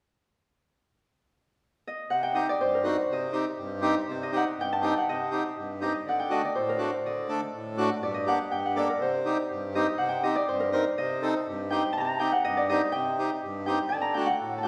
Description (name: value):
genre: klezmer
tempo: 122 BPM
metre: 2/4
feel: straight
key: C dorian sharp4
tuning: A4 = 440 Hz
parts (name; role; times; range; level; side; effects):
- Celtic harp; melody; 1.9-14.7 s; Bb4 to Bb5; -30 LUFS; equal; none
- accordion; accompaniment; 2.1-14.7 s; G2 to Bb4; -31 LUFS; equal; none
room: wet recital hall reverb, RT60 1.5 s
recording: recorded in a church or concert hall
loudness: -28 LUFS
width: mono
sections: 2.1-10.0 A section; 10.0-14.7 A section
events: none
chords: 1.1 N.C.; 2.1 Cm; 6.0 D; 8.0 Gm; 9.0 Cm; 13.9 D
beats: | 1.12 1.62 | 2.11 2.60 | 3.09 3.59 | 4.08 4.57 | 5.06 5.56 | 6.05 6.54 | 7.04 7.53 | 8.02 8.51 | 9.01 9.50 | 9.99 10.48 | 10.97 11.46 | 11.95 12.44 | 12.93 13.42 | 13.91 14.40